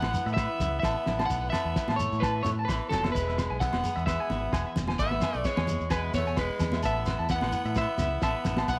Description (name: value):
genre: highlife guitar band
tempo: 130 BPM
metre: 4/4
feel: swing 54% on 16ths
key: A major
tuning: A4 = 440 Hz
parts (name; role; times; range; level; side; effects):
- electric guitar at the edge of break-up; melody; 0.0-8.8 s; A4 to F#5; -34 LUFS; equal; subtle chorus
- growling tenor saxophone; second line; 0.0-8.8 s; E3 to B3; -40 LUFS; equal; none
- picked steel-string acoustic guitar; accompaniment; 0.0-8.8 s; E2 to G#4; -43 LUFS; equal; none
- clean electric guitar; arpeggios; 0.0-8.8 s; B4 to A5; -38 LUFS; equal; vibrato effect, tape echo
- fingered electric bass; bass; 0.0-8.8 s; E1 to A2; -35 LUFS; equal; none
- cloth-damped thuddy drum kit; drums; 0.0-8.8 s; kick drum, snare drum; -35 LUFS; equal; none
- agogo bells; percussion; 0.0-8.7 s; none; -43 LUFS; equal; none
- congas; percussion; 0.0-8.7 s; none; -38 LUFS; equal; none
- shekere; percussion; 0.1-8.8 s; none; -42 LUFS; equal; none
room: light reverb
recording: none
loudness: -28 LUFS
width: mono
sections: 0.0-8.8 A section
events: none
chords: 0.0 Asus2; 3.1 E; 6.8 Asus2